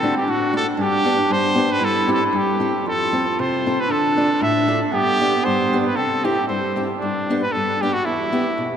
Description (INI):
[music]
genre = alpine folk, alpine dance band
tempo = 116 BPM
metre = 2/4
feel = straight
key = C major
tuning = A4 = 441 Hz
[part]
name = clear trumpet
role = melody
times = 0.0-8.8 s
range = D4 to E5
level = -20 LUFS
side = right 1 dB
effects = none
[part]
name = warm clarinet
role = second line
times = 0.0-6.8 s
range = B3 to F4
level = -23 LUFS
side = right 2 dB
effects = none
[part]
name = fingerpicked steel-string acoustic guitar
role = accompaniment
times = 0.0-8.8 s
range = E2 to A4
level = -23 LUFS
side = left 2 dB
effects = none
[sound]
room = wet cathedral reverb, RT60 5.0 s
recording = recorded in a church or concert hall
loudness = -17 LUFS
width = side -8 dB against mid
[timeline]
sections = 0.0-7.0 A section; 7.0-8.8 B section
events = none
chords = 0.0 D7; 0.8 G; 1.8 C/G; 2.9 F; 3.9 Dm; 4.9 G; 6.0 C; 7.0 G; 8.0 Em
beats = 0.26 | 0.78 1.29 | 1.81 2.33 | 2.86 3.38 | 3.90 4.42 | 4.93 5.45 | 5.97 6.49 | 7.01 7.53 | 8.05 8.57